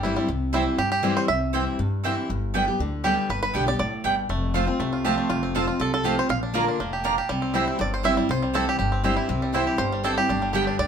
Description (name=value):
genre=bluegrass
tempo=240 BPM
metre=4/4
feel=straight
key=C mixolydian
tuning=A4 = 440 Hz
part: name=bluegrass banjo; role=melody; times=0.0-10.9 s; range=G3 to F5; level=-26 LUFS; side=right 2 dB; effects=none
part: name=picked steel-string acoustic guitar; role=accompaniment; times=0.0-10.9 s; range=F2 to G4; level=-26 LUFS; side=left 2 dB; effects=none
part: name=upright bass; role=bass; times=0.0-10.9 s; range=F1 to G2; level=-30 LUFS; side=left 1 dB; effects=none
part: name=mandolin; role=stabs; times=0.5-10.6 s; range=Bb3 to Bb5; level=-27 LUFS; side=right 4 dB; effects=none
room=moderate studio reverb, RT60 0.8 s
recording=minimal, uncompressed stereo recording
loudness=-21 LUFS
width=side -7 dB against mid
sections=0.3-8.3 A section; 8.3-10.9 A section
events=five-string banjo solo 0.3-10.9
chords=0.3 C; 2.3 G; 4.3 F; 6.3 Bb; 7.3 C; 10.3 G